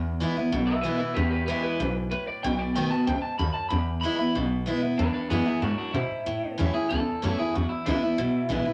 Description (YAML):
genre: rockabilly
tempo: 188 BPM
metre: 4/4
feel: straight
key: E major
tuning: A4 = 441 Hz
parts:
  - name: picked steel-string acoustic guitar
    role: accompaniment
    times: 0.0-8.7 s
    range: E2 to F#4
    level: -29 LUFS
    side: equal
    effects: none
  - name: upright bass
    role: bass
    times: 0.0-8.7 s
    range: A#1 to B2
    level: -31 LUFS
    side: equal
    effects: none
  - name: electric guitar through a small old amp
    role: melody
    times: 0.7-8.7 s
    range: B3 to B5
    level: -33 LUFS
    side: equal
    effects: none
room: moderate studio reverb, RT60 0.9 s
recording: none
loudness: -27 LUFS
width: mono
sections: 0.0-5.0 A section; 5.0-8.7 B section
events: clean electric guitar solo 0.0-5.0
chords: 0.0 E; 2.4 B7; 3.7 E; 6.3 A; 7.5 E